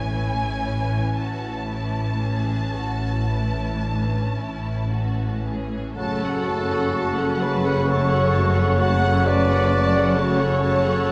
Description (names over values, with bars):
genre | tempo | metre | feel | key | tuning
classical | 36-45 BPM (dotted quarters) | 12/8 | rubato | A major, F# minor from 6.0 s | A4 = 438 Hz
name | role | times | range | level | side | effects
warm symphonic violin section | melody | 0.0-11.1 s | F#5 to A5 | -35 LUFS | equal | none
warm studio violin section | second line | 0.0-11.1 s | D4 to F#5 | -36 LUFS | equal | none
rich symphonic viola section | accompaniment | 0.0-11.1 s | E3 to A4 | -33 LUFS | equal | none
mellow French horn section | sustained chords | 0.0-11.1 s | E3 to C#4 | -32 LUFS | equal | none
rich symphonic double bass section | bass | 0.0-11.1 s | F#1 to A1 | -28 LUFS | equal | none
warm symphonic cello section | bass | 0.0-11.1 s | F#2 to A2 | -29 LUFS | equal | none
clear clarinet | second line | 6.0-11.1 s | F#4 to C#5 | -32 LUFS | equal | none
flute section | second line | 6.0-11.1 s | C#6 | -33 LUFS | equal | none
warm oboe | second line | 6.0-11.1 s | F#5 | -33 LUFS | equal | none
clear bassoon | accompaniment | 6.0-11.1 s | C#3 | -32 LUFS | equal | none
mellow trumpet | stabs | 6.0-11.1 s | A4 to F#5 | -28 LUFS | equal | none
room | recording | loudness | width
moderate concert hall reverb, RT60 2.0 s | dark, warm production | -22 LUFS | mono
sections
0.0-6.0 A section; 6.0-11.1 B section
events
none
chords
0.0 A; 6.0 F#m